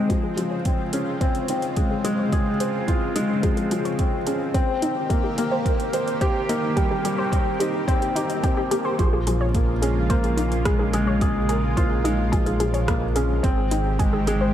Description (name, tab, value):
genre	piano and strings electronica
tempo	108 BPM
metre	4/4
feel	straight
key	unclear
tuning	A4 = 439 Hz
part	lush unison pad	sustained chords	0.0-14.5 s	Db3 to G4	-30 LUFS	right 1 dB	chorus, phaser, sidechain pumping
part	felt-muted upright piano	riff	0.0-14.5 s	F3 to C5	-24 LUFS	left 1 dB	digital delay
part	warbly dusty pluck	arpeggios	0.1-14.5 s	Eb4 to Db5	-29 LUFS	equal	chorus, sidechain pumping, digital delay
part	deep house drum kit	drums	0.1-14.4 s	hi-hat, rim click	-33 LUFS	right 1 dB	none
part	electronic kick drum	drums	0.1-14.1 s	none	-23 LUFS	right 1 dB	none
part	dark detuned saw bass	bass	9.0-14.5 s	Ab1 to Bb1	-24 LUFS	right 1 dB	sidechain pumping
room	moderate lush hall reverb, RT60 1.7 s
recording	none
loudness	-20 LUFS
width	side -11 dB against mid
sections	0.0-9.0 A section; 9.0-14.5 B section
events	build-up 0.0-9.0; filter sweep on synth arpeggio sound 0.0-9.0; drop 9.0-14.5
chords	0.1 Dbmaj7; 4.5 Cm7; 9.0 Bbm7; 13.4 Abmaj7